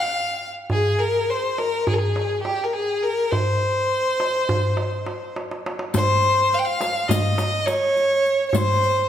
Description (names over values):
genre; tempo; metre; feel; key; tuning
Turkish makam ensemble; 207 BPM (eighths); 9/8; straight; C makam ussak, C makam kurdi from 5.9 s; A4 = 439 Hz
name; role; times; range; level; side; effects
clear violin; melody; 0.0-9.1 s; G4 to G5; -20 LUFS; left 1 dB; none
darbuka; percussion; 0.7-8.7 s; none; -25 LUFS; right 1 dB; none
riq; percussion; 5.9-8.9 s; none; -29 LUFS; left 6 dB; none
room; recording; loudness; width
moderate scoring stage reverb, RT60 2.0 s; none; -19 LUFS; side -10 dB against mid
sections
0.0-5.9 A section; 5.9-9.1 B section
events
drum fill 5.3-5.9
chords
none